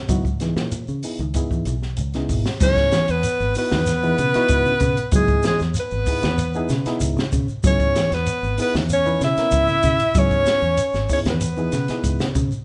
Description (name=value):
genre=afrobeat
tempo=95 BPM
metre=4/4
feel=straight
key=C# minor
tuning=A4 = 440 Hz
part: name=reed electric piano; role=accompaniment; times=0.1-12.3 s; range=B3 to B4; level=-31 LUFS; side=equal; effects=none
part: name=semi-hollow electric guitar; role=arpeggios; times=0.1-12.6 s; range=B2 to F#3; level=-29 LUFS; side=equal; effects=none
part: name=fingered electric bass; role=bass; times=0.1-12.6 s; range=G#1 to C#3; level=-28 LUFS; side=equal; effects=none
part: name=compact cocktail drum kit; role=drums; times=0.1-12.5 s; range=crash cymbal, hi-hat, kick drum, snare drum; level=-26 LUFS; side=equal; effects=none
part: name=shekere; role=percussion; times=0.1-12.6 s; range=none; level=-33 LUFS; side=equal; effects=none
part: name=clear alto saxophone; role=melody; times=2.6-12.3 s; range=G#4 to E5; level=-23 LUFS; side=equal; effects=none
part: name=bright trombone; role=second line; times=2.6-12.3 s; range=G#3 to E4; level=-31 LUFS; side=equal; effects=none
room=moderate large studio reverb, RT60 1.2 s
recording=band playing live in one room, nothing above 10.5 kHz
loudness=-20 LUFS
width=mono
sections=0.0-2.6 A section; 2.6-12.6 B section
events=none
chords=0.0 C#m7